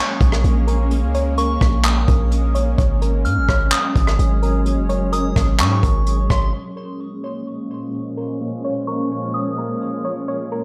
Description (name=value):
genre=hip hop, atmospheric cloud-rap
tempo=128 BPM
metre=4/4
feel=half-time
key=Bb minor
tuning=A4 = 439 Hz
part: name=soft synth bell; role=melody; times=0.0-10.2 s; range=C6 to F6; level=-29 LUFS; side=equal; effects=chorus, low-pass filter, tape echo
part: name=shimmering ambient pad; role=sustained chords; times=0.0-10.6 s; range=Ab2 to Db4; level=-27 LUFS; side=equal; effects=chorus, built-in reverb, sidechain pumping, low-pass filter
part: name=soft round pluck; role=arpeggios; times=0.0-10.6 s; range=Bb3 to Db5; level=-31 LUFS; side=equal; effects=chorus, low-pass filter, tape echo
part: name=warm 808-style bass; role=bass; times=0.2-6.5 s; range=Gb1 to Ab2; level=-20 LUFS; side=equal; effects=none
part: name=vintage brush drum kit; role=drums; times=0.2-6.4 s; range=handclaps, hi-hat, kick drum, rim click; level=-22 LUFS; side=equal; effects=none
room=light reverb, studio reverb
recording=none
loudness=-19 LUFS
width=mono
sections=0.0-6.5 A section; 6.5-10.6 B section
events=filter sweep 6.5-10.6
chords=0.0 Bbm7; 2.8 Ab9sus4; 6.5 Bbm7